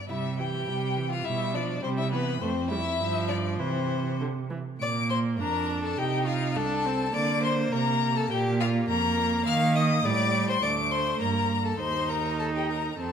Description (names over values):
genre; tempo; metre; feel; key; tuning
quick classical-period movement for string quartet; 103 BPM; 2/4; straight; C major, Bb major from 4.8 s; A4 = 440 Hz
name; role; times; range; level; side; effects
clear violin; melody; 0.0-13.1 s; B4 to F6; -30 LUFS; left 6 dB; none
clear violin; second line; 0.1-13.1 s; B3 to F5; -31 LUFS; left 3 dB; none
clear viola; accompaniment; 0.1-13.1 s; D3 to Eb4; -31 LUFS; right 2 dB; none
rich cello; bass; 0.1-13.1 s; C2 to Eb3; -30 LUFS; right 5 dB; none
room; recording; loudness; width
moderate recital hall reverb, RT60 1.8 s; none; -24 LUFS; side -7 dB against mid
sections
0.0-4.8 A section; 4.8-13.1 B section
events
none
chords
0.1 C; 1.3 G7/B; 1.8 C; 2.4 F; 3.0 G5; 3.6 C; 4.8 Bb; 6.0 Cm69; 7.1 Bb/D; 8.3 Bb5; 9.5 Eb5; 10.0 A7sus4; 10.6 D5; 11.2 Gm; 11.8 Eb6